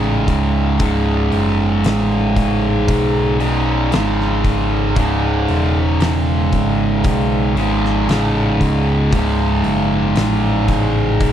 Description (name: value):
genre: stoner and doom metal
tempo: 58 BPM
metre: 4/4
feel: straight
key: C# minor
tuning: A4 = 440 Hz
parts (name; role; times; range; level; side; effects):
- fuzz guitar; riff; 0.0-11.3 s; C#2 to C#3; -16 LUFS; right 1 dB; distortion
- overdriven picked electric bass; bass; 0.0-11.3 s; C#1 to C#2; -19 LUFS; left 1 dB; none
- oversized low-tuned drum kit; drums; 0.3-11.3 s; hi-hat, kick drum, snare drum; -22 LUFS; left 1 dB; none
room: small room ambience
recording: dry, close 1970s-style studio recording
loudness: -14 LUFS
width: side -10 dB against mid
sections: 0.0-11.3 A section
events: none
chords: 0.0 C#5